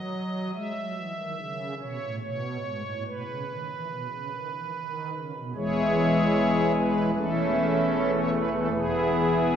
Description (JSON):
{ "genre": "classical, chorale-style piece for pipe organ", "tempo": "71-77 BPM", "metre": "4/4", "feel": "rubato", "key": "E major", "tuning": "A4 = 440 Hz", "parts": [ { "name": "pipe organ, strings celeste", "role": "solo", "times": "0.0-9.6 s", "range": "E1 to E5", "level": "-25 LUFS", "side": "equal", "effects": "none" } ], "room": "wet concert hall reverb, RT60 2.3 s", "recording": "heard from further back in the room, studio ambience", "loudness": "-25 LUFS", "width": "side -8 dB against mid", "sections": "0.0-5.5 A section; 5.5-9.6 B section", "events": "none", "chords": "0.0 B (rootless); 0.5 E5; 3.9 B; 5.5 E; 7.2 A/E; 8.7 E", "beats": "0.55 1.37 | 2.21 3.05 3.89 4.73 | 5.55 6.35 7.15 7.94 | 8.72 9.51" }